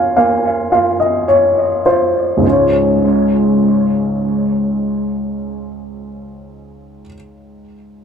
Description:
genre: pop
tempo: 51 BPM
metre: 4/4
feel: straight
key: Db major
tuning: A4 = 440 Hz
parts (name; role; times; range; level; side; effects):
- warm upright piano; accompaniment; 0.0-8.0 s; Db2 to Ab5; -13 LUFS; equal; analog delay
room: moderate spring reverb, RT60 2.0 s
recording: echo-heavy mix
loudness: -12 LUFS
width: side -7 dB against mid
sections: 0.0-2.4 A section; 2.4-7.1 B section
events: upright piano fill 0.0-2.4; slowing down 0.0-2.4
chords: 0.0 Bbm; 2.4 Db

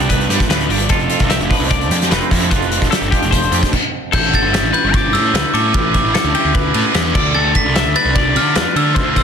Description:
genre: math rock and midwest emo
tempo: 149 BPM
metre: 4/4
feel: straight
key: unclear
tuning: A4 = 441 Hz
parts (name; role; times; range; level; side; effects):
- twangy electric guitar; accompaniment; 0.0-5.3 s; F2 to G4; -23 LUFS; right 12 dB; tremolo
- twelve-string electric guitar; arpeggios; 0.0-9.2 s; G4 to D6; -21 LUFS; left 10 dB; wide subtle chorus
- raw garage guitar; riff; 0.0-9.2 s; G2 to F4; -23 LUFS; right 3 dB; overdrive
- fuzz picked electric bass; bass; 0.0-9.2 s; F1 to D3; -19 LUFS; equal; overdrive
- loose indie drum kit; drums; 0.0-9.2 s; crash cymbal, hi-hat, kick drum, ride cymbal, snare drum; -16 LUFS; equal; none
- glockenspiel with hard plastic mallets; melody; 4.1-9.2 s; D6 to B6; -18 LUFS; left 1 dB; digital delay
room: little or no reverb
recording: dense, heavily limited modern master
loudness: -12 LUFS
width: side -7 dB against mid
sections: 0.0-4.1 A section; 4.1-9.2 B section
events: stop 3.7-4.1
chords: 0.0 G9sus4; 0.9 Dm7/F; 4.1 A9sus4; 7.1 Dm9

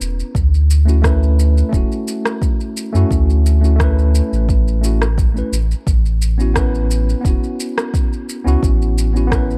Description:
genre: sunset chillout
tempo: 87 BPM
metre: 4/4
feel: straight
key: unclear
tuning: A4 = 440 Hz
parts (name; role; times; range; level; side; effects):
- mellow tine electric piano; accompaniment; 0.0-9.6 s; A3 to B4; -24 LUFS; equal; delay
- warm sub bass; bass; 0.0-9.6 s; D1 to F#2; -16 LUFS; equal; none
- electronic shaker and rim click; drums; 0.0-9.6 s; none; -27 LUFS; equal; overdrive
- electronic kick drum; drums; 0.3-9.5 s; none; -20 LUFS; equal; overdrive
room: little or no reverb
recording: dark, warm production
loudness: -16 LUFS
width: mono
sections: 0.0-9.6 A section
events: none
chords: 0.4 Dmaj9; 5.9 A69

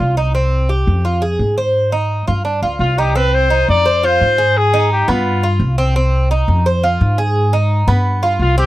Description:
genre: latin, Cuban son and guajira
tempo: 171 BPM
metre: 4/4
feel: straight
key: C harmonic minor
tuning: A4 = 440 Hz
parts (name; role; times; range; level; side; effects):
- Cuban tres; arpeggios; 0.0-8.7 s; B3 to C5; -18 LUFS; right 2 dB; none
- upright bass; bass; 0.0-8.7 s; C2 to Ab2; -16 LUFS; equal; none
- warm trumpet; melody; 2.8-5.6, 8.4-8.7 s; F4 to D5; -14 LUFS; left 2 dB; none
room: little or no reverb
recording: dry, close 1970s-style studio recording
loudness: -13 LUFS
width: side -16 dB against mid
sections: 0.0-3.2 A section; 3.2-8.7 B section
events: none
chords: 0.4 C5; 1.1 Fm; 1.8 Ab; 2.5 G5; 3.2 Cm; 3.9 Fm; 4.6 Ab5; 5.3 G7; 6.0 Cm; 6.7 Fm; 7.4 Ab5; 8.1 G7

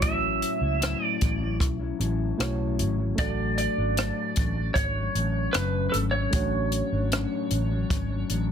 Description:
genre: indie pop, bedroom pop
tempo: 76 BPM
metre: 4/4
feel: straight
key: unclear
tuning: A4 = 442 Hz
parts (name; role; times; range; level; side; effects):
- clean lap steel guitar; melody; 0.0-8.4 s; A4 to E5; -29 LUFS; right 3 dB; wide subtle chorus, slapback echo, plate reverb
- mellow electric guitar; accompaniment; 0.0-8.5 s; A2 to E4; -31 LUFS; left 8 dB; lush chorus, warbly pitch drift
- reed electric piano; accompaniment; 0.0-8.5 s; A3 to C#5; -36 LUFS; right 5 dB; cassette tape, plate reverb
- vintage muted fingered electric bass; bass; 0.0-8.5 s; F#1 to C#2; -28 LUFS; equal; none
- compact cocktail drum kit; drums; 0.0-8.5 s; hi-hat, kick drum, rim click; -28 LUFS; equal; soft clipping on snare
room: light reverb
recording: dense, heavily limited modern master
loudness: -24 LUFS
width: side -8 dB against mid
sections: 0.0-8.5 A section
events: none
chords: 0.0 A6; 3.2 Dmaj7

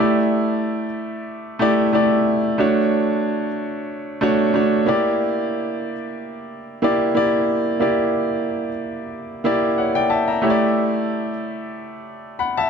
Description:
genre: soul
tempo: 92 BPM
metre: 4/4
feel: swing 54% on 16ths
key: unclear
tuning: A4 = 440 Hz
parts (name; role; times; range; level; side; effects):
- clear grand piano; solo; 0.0-12.7 s; A3 to B5; -18 LUFS; equal; none
room: moderate plate reverb, RT60 3.4 s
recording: dark, warm production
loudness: -18 LUFS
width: side -6 dB against mid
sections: 0.0-12.7 A section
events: none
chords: 0.0 A7sus4; 2.6 Dmaj7/A; 4.9 Gm6/Bb; 10.4 A7sus4

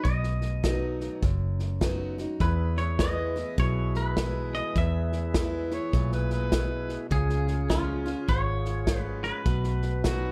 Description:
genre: honky-tonk and classic country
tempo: 102 BPM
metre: 4/4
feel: swing 62% on 8ths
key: unclear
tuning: A4 = 442 Hz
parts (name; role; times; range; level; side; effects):
- twangy electric guitar; melody; 0.0-10.3 s; E#4 to E5; -36 LUFS; equal; tape echo
- picked steel-string acoustic guitar; accompaniment; 0.0-10.3 s; E2 to F#4; -37 LUFS; equal; none
- natural country drum kit; drums; 0.0-10.2 s; hi-hat, kick drum, snare drum; -32 LUFS; equal; none
- vintage muted fingered electric bass; bass; 0.1-10.3 s; F#1 to E2; -31 LUFS; equal; none
- percussive tonewheel organ; accompaniment; 2.4-10.3 s; B3 to C#5; -40 LUFS; equal; slow rotary speaker
- mellow harmonica; second line; 5.7-10.3 s; F#4 to C#5; -37 LUFS; equal; none
room: little or no reverb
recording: dark, warm production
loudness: -28 LUFS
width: mono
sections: 0.0-10.3 A section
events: none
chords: 0.0 B; 2.4 E; 7.1 C#; 9.5 B

